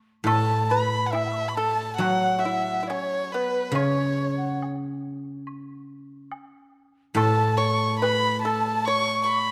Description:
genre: chinese traditional, Chinese chamber ensemble.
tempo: 70 BPM.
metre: 4/4.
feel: straight.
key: A gong mode.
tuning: A4 = 440 Hz.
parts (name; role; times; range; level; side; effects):
guzheng; accompaniment; 0.2-9.5 s; A2 to F#3; -30 LUFS; equal; none.
warm erhu; melody; 0.3-9.5 s; B4 to C#6; -29 LUFS; equal; none.
mellow large dizi; second line; 0.3-9.5 s; B4 to E6; -31 LUFS; equal; none.
pipa; second line; 0.3-9.5 s; B3 to C#5; -31 LUFS; equal; none.
woodblock; percussion; 0.3-9.1 s; none; -39 LUFS; equal; none.
room: moderate scoring stage reverb, RT60 1.8 s.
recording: close, detailed microphones.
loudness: -24 LUFS.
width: mono.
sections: 0.3-9.5 A section.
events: none.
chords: none.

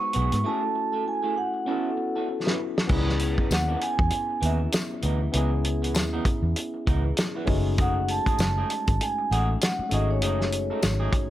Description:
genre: lush 1970s-style soul.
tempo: 98 BPM.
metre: 4/4.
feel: swing 58% on 16ths.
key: unclear.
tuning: A4 = 439 Hz.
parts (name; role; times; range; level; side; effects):
vibraphone with soft mallets; melody; 0.0-11.3 s; C#5 to C#6; -29 LUFS; right 2 dB; none.
barky tine electric piano; accompaniment; 0.0-11.3 s; G#3 to B4; -31 LUFS; left 2 dB; phaser.
electric guitar through a small old amp; riff; 0.0-11.2 s; E3 to B4; -34 LUFS; right 3 dB; spring reverb.
warm soul drum kit; drums; 0.1-11.3 s; crash cymbal, hi-hat, kick drum, rim click, snare drum; -26 LUFS; equal; none.
vintage muted fingered electric bass; bass; 0.2-11.1 s; F#1 to G#2; -25 LUFS; equal; none.
tambourine; percussion; 3.5-11.0 s; none; -38 LUFS; left 5 dB; none.
room: little or no reverb.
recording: none.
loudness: -23 LUFS.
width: side -13 dB against mid.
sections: 0.0-2.9 A section; 2.9-11.3 B section.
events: break 0.5-2.9; drum fill 2.3-2.9.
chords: 0.5 F#m9; 1.7 B9sus4; 2.9 C#m9; 7.5 F#m69.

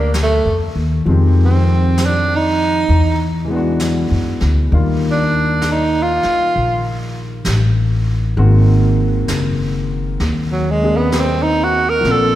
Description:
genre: jazz ballad.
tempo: 66 BPM.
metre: 4/4.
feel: swing 66% on 8ths.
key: unclear.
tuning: A4 = 440 Hz.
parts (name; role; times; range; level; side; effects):
breathy tenor saxophone; melody; 0.0-12.4 s; Gb3 to Bb4; -16 LUFS; right 2 dB; none.
warm grand piano; accompaniment; 0.0-12.4 s; Eb3 to D5; -21 LUFS; left 2 dB; none.
upright bass; bass; 0.0-12.4 s; Gb1 to F#2; -16 LUFS; equal; none.
jazz brush drum kit; drums; 0.1-12.4 s; brushed snare drum, hi-hat, snare drum; -28 LUFS; right 1 dB; none.
room: wet scoring stage reverb, RT60 2.0 s.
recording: recorded in a church or concert hall.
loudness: -13 LUFS.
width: side -13 dB against mid.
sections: 0.0-12.4 A section.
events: tenor saxophone solo 0.0-12.4.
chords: 0.0 Gsus2; 1.1 Fm9; 2.9 E9; 4.7 Ebmaj9; 8.4 Ab9.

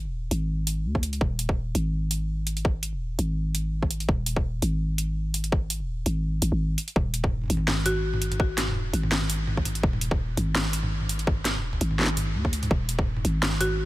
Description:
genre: half-time drum and bass.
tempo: 167 BPM.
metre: 4/4.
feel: swing 55% on 16ths, half-time.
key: Eb minor.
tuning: A4 = 444 Hz.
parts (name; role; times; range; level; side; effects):
growling 808-style bass; bass; 0.0-13.9 s; Eb1 to Eb2; -27 LUFS; equal; none.
drum and bass drum kit; drums; 0.3-13.7 s; hi-hat, snare drum, toms; -28 LUFS; equal; overdrive.
electronic kick drum; drums; 0.9-13.1 s; none; -24 LUFS; equal; overdrive.
buzzing marimba with hard mallets; melody; 7.9-8.2, 13.6-13.9 s; Gb4; -30 LUFS; equal; ping-pong delay.
room: digital ambience.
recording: none.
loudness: -24 LUFS.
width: side -17 dB against mid.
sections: 0.0-13.9 A section.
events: break 6.6-7.0.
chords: 0.0 Eb5.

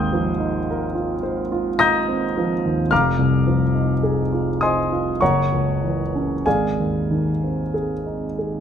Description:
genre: classical, impressionist solo piano.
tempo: 46-55 BPM.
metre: 3/4.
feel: rubato.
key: Ab lydian.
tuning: A4 = 441 Hz.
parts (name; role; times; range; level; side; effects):
warm concert grand piano; solo; 0.0-8.6 s; F1 to Bb6; -18 LUFS; equal; none.
room: moderate recital hall reverb, RT60 1.5 s.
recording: close, detailed microphones.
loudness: -18 LUFS.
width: side -8 dB against mid.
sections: 0.0-8.6 A section.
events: none.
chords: 0.0 Eb69/Ab; 2.9 Fm7; 5.2 Gb7; 6.5 Ab.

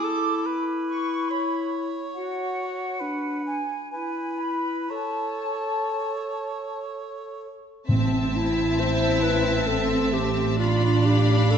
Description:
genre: classical.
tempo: 59-72 BPM.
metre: 3/4.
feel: rubato.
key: A major, A minor from 7.9 s.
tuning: A4 = 440 Hz.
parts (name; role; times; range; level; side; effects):
mellow clarinet; second line; 0.0-11.6 s; C4 to C5; -28 LUFS; left 1 dB; none.
mellow cor anglais; second line; 0.0-7.5 s; A4 to C#5; -32 LUFS; right 4 dB; none.
mellow flute section; second line; 0.0-6.9 s; F#5 to D6; -30 LUFS; left 1 dB; none.
warm studio violin section; melody; 7.9-11.6 s; A5 to B5; -32 LUFS; left 4 dB; none.
clear studio violin section; second line; 7.9-11.6 s; E5 to F5; -30 LUFS; equal; none.
rich studio viola section; accompaniment; 7.9-11.6 s; C4 to D4; -29 LUFS; left 2 dB; none.
warm studio double bass section; bass; 7.9-11.6 s; A1; -24 LUFS; right 2 dB; none.
timpani; percussion; 7.9-9.2 s; A2; -27 LUFS; right 1 dB; none.
warm studio cello section; bass; 8.8-11.6 s; C4 to E4; -27 LUFS; equal; none.
room: moderate scoring stage reverb, RT60 2.0 s.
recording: nothing above 8.0 kHz.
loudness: -22 LUFS.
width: side -8 dB against mid.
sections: 0.0-7.9 A section; 7.9-11.6 B section.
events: none.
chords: 0.0 E7(no3); 2.2 F#5; 3.0 Bm/D; 3.9 E; 4.9 A; 7.9 Am; 10.6 Bm7b5/A.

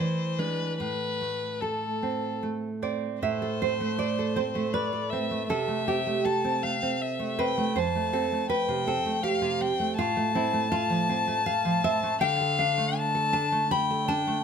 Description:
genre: romantic duo for violin and classical guitar.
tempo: 72-82 BPM.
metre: 3/4.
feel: rubato.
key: A minor.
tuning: A4 = 437 Hz.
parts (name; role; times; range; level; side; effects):
rich violin; melody; 0.0-14.4 s; A4 to A5; -29 LUFS; left 4 dB; none.
nylon-string guitar; accompaniment; 0.0-14.4 s; F2 to B5; -27 LUFS; right 2 dB; none.
room: moderate recital hall reverb, RT60 1.4 s.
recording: close, detailed microphones.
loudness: -25 LUFS.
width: side -7 dB against mid.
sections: 0.0-3.2 A section; 3.2-14.4 B section.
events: none.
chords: 0.0 E7; 0.8 Am; 5.5 Am/C; 7.8 F; 10.0 F/A; 12.2 Dm.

